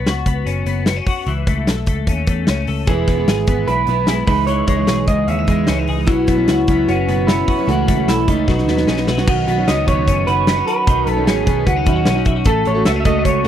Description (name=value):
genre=jangly indie pop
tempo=150 BPM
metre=4/4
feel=straight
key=unclear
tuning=A4 = 440 Hz
part: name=twelve-string electric guitar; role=arpeggios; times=0.0-13.5 s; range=D#3 to A4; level=-23 LUFS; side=left 7 dB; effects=ensemble chorus, tape echo
part: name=vintage muted picked electric bass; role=bass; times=0.0-13.5 s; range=E1 to E2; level=-21 LUFS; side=equal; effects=none
part: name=big rock drum kit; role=drums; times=0.1-13.5 s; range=crash cymbal, hi-hat, kick drum, snare drum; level=-18 LUFS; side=equal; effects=none
part: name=electric guitar through a small old amp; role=melody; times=2.9-13.5 s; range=D#4 to E5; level=-19 LUFS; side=right 2 dB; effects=spring reverb
part: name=picked plugged-in steel-string acoustic guitar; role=accompaniment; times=2.9-13.5 s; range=B2 to A4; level=-22 LUFS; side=right 4 dB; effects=none
room=little or no reverb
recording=dry, close 1970s-style studio recording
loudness=-14 LUFS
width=side -10 dB against mid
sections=0.0-9.3 A section; 9.3-13.5 B section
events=drum fill 8.5-9.3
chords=0.0 Bsus2; 1.3 A; 2.9 E; 4.3 C#madd9; 6.1 Bsus2; 7.7 A/C#; 8.5 B; 9.3 Badd9; 12.5 F#m/A